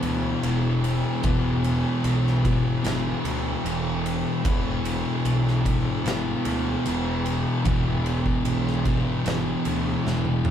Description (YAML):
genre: stoner and doom metal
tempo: 75 BPM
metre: 4/4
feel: straight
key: unclear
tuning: A4 = 441 Hz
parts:
  - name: thick fuzz guitar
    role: riff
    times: 0.0-10.5 s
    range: E2 to E3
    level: -25 LUFS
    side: left 3 dB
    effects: distortion
  - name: thick fuzz guitar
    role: riff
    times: 0.0-10.5 s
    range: E2 to E3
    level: -29 LUFS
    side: right 4 dB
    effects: distortion
  - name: fuzz picked electric bass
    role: bass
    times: 0.0-10.5 s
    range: E1 to D2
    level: -28 LUFS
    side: right 1 dB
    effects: overdrive
  - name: oversized low-tuned drum kit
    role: drums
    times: 0.0-10.5 s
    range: kick drum, ride cymbal, snare drum, toms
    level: -28 LUFS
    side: right 1 dB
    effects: none
room: light reverb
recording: band playing live in one room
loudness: -22 LUFS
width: side -9 dB against mid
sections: 0.0-10.5 A section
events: drum fill 10.0-10.5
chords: 0.0 E5